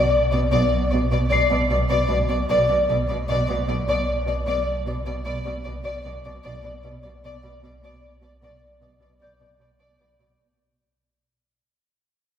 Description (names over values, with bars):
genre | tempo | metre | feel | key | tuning
cinematic, suspense film score | 76 BPM | 5/4 | straight | B phrygian | A4 = 440 Hz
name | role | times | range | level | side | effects
muted symphonic violin section | melody | 0.0-10.3 s | D5 | -23 LUFS | left 2 dB | none
pure sine sub bass | drone | 0.0-10.4 s | B1 | -28 LUFS | equal | none
muted symphonic cello section | bass | 0.3-10.3 s | B2 | -27 LUFS | right 2 dB | none
muted symphonic double bass section | bass | 0.5-10.1 s | B1 | -30 LUFS | right 2 dB | none
celesta | texture | 1.3-10.4 s | G6 to C7 | -26 LUFS | left 3 dB | none
room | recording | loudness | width
wet concert hall reverb, RT60 2.2 s | recorded in a church or concert hall | -20 LUFS | side -9 dB against mid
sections
0.0-10.4 A section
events
fade-out 0.0-10.4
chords
0.0 Csus2/B